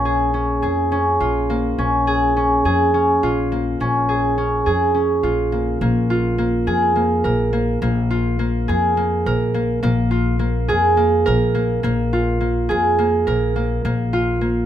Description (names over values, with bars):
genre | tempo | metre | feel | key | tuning
contemporary instrumental, chamber music in an uneven meter | 209 BPM (eighths) | 7/8 | straight | Bb minor | A4 = 441 Hz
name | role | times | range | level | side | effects
concert harp | arpeggios | 0.0-14.7 s | Bb3 to Bb4 | -18 LUFS | equal | none
upright bass | bass | 0.0-14.7 s | Bb1 to F2 | -22 LUFS | left 1 dB | none
room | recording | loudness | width
moderate studio reverb, RT60 0.8 s | none | -16 LUFS | side -10 dB against mid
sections
0.0-5.8 A section; 5.8-14.7 B section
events
none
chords
0.0 Bbm7; 13.8 Absus2